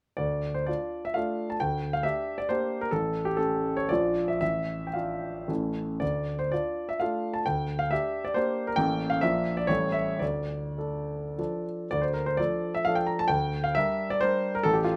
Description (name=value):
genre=classical, romantic triple-time dance for piano with dotted rhythms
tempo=98-148 BPM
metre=3/4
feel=rubato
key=D minor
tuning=A4 = 439 Hz
part: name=clear grand piano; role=solo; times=0.2-15.0 s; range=A1 to Bb5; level=-28 LUFS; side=equal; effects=none
room=light reverb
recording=none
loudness=-28 LUFS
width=mono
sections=0.2-11.9 A section; 11.9-15.0 A section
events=none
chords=0.2 Dm; 1.6 Gm/D; 2.9 A7; 3.9 Bb; 4.4 Dm/A; 5.5 A; 6.0 Dm; 7.5 Gm/D; 8.8 A7b9; 9.2 Bb; 9.7 A7; 10.2 Dm; 13.3 Gm/D